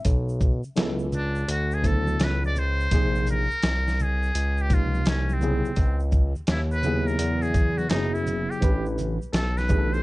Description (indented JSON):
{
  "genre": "hip hop, jazz-hop",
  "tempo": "84 BPM",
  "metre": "4/4",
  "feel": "swing 66% on 16ths",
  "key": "unclear",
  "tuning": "A4 = 440 Hz",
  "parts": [
    { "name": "tine electric piano", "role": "accompaniment", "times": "0.0-10.0 s", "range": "B#2 to B4", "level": "-28 LUFS", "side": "equal", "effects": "overdrive, fast stereo tremolo" },
    { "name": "dusty soul sampler-style drum kit", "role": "drums", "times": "0.0-9.9 s", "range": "hi-hat, kick drum, shaker, snare drum", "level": "-23 LUFS", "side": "equal", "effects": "none" },
    { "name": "tube shaker and congas", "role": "percussion", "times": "0.0-10.0 s", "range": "none", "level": "-38 LUFS", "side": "equal", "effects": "none" },
    { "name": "smooth synth bass", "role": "bass", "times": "0.1-10.0 s", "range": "F#1 to E2", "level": "-26 LUFS", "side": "equal", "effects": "transformer saturation" },
    { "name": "trumpet with metal mute", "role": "melody", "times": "1.2-10.0 s", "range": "B#3 to D5", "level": "-29 LUFS", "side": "equal", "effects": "none" }
  ],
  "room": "little or no reverb",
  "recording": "worn, warbling old tape, cassette tape, warbly pitch drift, nothing above 10.3 kHz",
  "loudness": "-22 LUFS",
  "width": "side -20 dB against mid",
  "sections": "0.1-10.0 A section",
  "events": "muted trumpet solo 0.1-10.0",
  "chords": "0.1 Bm11; 2.9 A#m11; 5.8 C#m11; 8.6 A9sus4"
}